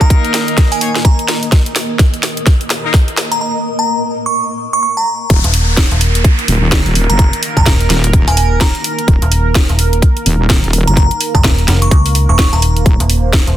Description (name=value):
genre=bass house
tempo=127 BPM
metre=4/4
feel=swing 60% on 16ths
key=unclear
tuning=A4 = 440 Hz
part: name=glassy synth bell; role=melody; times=0.0-12.9 s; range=Ab5 to Db6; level=-19 LUFS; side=right 1 dB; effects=chorus, ping-pong delay
part: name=sweeping resonant pad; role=sustained chords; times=0.0-13.6 s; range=Eb3 to C5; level=-22 LUFS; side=right 3 dB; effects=chorus, sidechain pumping
part: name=bright horn section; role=stabs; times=0.0-2.9 s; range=Bb3 to Db5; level=-21 LUFS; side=left 5 dB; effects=sidechain pumping, low-pass filter, ping-pong delay
part: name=electronic kick drum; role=drums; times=0.0-13.4 s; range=none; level=-10 LUFS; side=equal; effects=none
part: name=garage drum kit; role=drums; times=0.0-13.5 s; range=hi-hat, snare drum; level=-17 LUFS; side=equal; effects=high-pass filter on hats, high-pass filter on snare, high-pass filter on toms
part: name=granular cloud pad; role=texture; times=0.0-3.4 s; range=Bb3 to Eb6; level=-22 LUFS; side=left 1 dB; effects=built-in reverb, sidechain pumping
part: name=wobble bass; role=bass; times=5.3-13.0 s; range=Eb1 to Gb1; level=-13 LUFS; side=equal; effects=chorus, sidechain pumping
part: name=downlifter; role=sound effects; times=5.3-9.1 s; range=none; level=-21 LUFS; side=equal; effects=none
part: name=metallic FM bass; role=bass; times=5.4-13.6 s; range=Eb1 to Db2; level=-13 LUFS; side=equal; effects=overdrive, sidechain pumping
room=little or no reverb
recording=dense, heavily limited modern master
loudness=-10 LUFS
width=side -12 dB against mid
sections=0.0-5.3 A section; 5.3-13.6 B section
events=build-up 0.0-5.3; drum fill 0.0-3.4; filter sweep on analog synth pad 0.0-5.3; break 3.4-5.3; drop 5.3-13.6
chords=0.0 Eb5